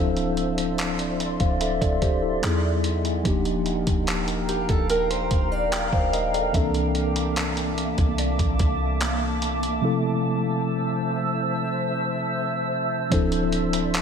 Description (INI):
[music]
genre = contemporary R&B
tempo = 73 BPM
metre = 4/4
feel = straight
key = D minor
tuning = A4 = 440 Hz
[part]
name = mellow tine electric piano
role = accompaniment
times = 0.0-14.0 s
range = C3 to G5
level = -25 LUFS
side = left 1 dB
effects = medium stereo tremolo
[part]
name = granular cloud pad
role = sustained chords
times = 0.0-14.0 s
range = Bb3 to E6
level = -28 LUFS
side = right 1 dB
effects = built-in reverb, sidechain pumping
[part]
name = warm 808-style bass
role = bass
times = 0.0-14.0 s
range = D1 to E2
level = -28 LUFS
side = equal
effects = none
[part]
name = dusty soul sampler-style drum kit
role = drums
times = 0.2-14.0 s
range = handclaps, hi-hat, kick drum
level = -26 LUFS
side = equal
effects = none
[part]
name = picked acoustic archtop guitar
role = arpeggios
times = 4.5-6.5 s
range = G4 to D5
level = -27 LUFS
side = right 2 dB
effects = ping-pong delay
[part]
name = mallet-like synth pluck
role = texture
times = 6.5-14.0 s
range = C5 to E5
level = -37 LUFS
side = equal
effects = none
[sound]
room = light reverb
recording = none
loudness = -21 LUFS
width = side -7 dB against mid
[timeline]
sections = 0.0-13.1 A section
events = none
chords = 0.0 Dm9; 2.4 Emaj9; 3.3 Ebmaj9; 6.5 C13; 9.8 Fmaj7/C; 13.1 Dm9